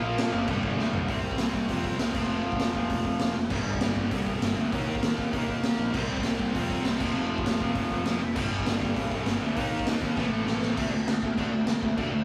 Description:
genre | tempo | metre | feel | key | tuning
punk rock | 198 BPM | 4/4 | straight | unclear | A4 = 440 Hz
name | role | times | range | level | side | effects
distorted electric guitar | riff | 0.0-12.2 s | F2 to Eb4 | -37 LUFS | equal | overdrive
distorted electric guitar | riff | 0.0-12.2 s | F2 to Eb4 | -36 LUFS | equal | distortion
scooped high-gain guitar | riff | 0.0-1.1, 5.9-10.8 s | F2 to Eb4 | -40 LUFS | equal | none
fuzz picked electric bass | bass | 0.0-12.2 s | F1 to Bb2 | -34 LUFS | equal | overdrive
raw garage drum kit | drums | 0.2-12.0 s | crash cymbal, hi-hat, kick drum, snare drum, toms | -30 LUFS | equal | none
room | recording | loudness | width
light reverb | rough rehearsal-room recording | -28 LUFS | mono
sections
0.0-1.1 A section; 1.1-10.8 B section; 10.8-12.2 C section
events
drum fill 0.8-1.1, 10.2-10.8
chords
0.5 G; 1.1 C5; 2.1 F5; 3.5 G5; 4.7 Eb5; 5.9 C5; 7.0 F5; 8.4 G5; 9.6 Eb5; 10.2 A5; 10.8 D5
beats
0.18 0.48 0.78 | 1.09 1.39 1.69 2.00 | 2.30 2.60 2.91 3.21 | 3.51 3.82 4.12 4.42 | 4.73 5.03 5.33 5.64 | 5.94 6.24 6.55 6.85 | 7.15 7.46 7.76 8.06 | 8.36 8.66 8.97 9.27 | 9.57 9.87 10.17 10.47 | 10.77 11.07 11.38 11.68 | 11.98

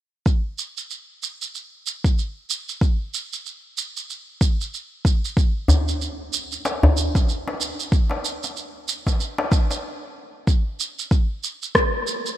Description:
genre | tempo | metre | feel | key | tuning
downtempo | 94 BPM | 4/4 | swing 59% on 16ths | none | none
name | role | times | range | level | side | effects
electronic kick drum | drums | 0.3-11.9 s | none | -19 LUFS | equal | none
electronic shaker and rim click | drums | 0.3-12.4 s | none | -26 LUFS | right 2 dB | none
darbuka | percussion | 5.7-9.8 s | none | -21 LUFS | left 1 dB | none
room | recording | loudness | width
light reverb | none | -21 LUFS | side -13 dB against mid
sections
0.3-10.5 A section; 10.5-12.4 B section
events
stop 9.8-10.5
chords
none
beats
| 0.26 0.90 1.54 2.18 | 2.82 3.46 4.09 4.73 | 5.37 6.01 6.65 7.29 | 7.92 8.56 9.20 9.84 | 10.48 11.12 11.75

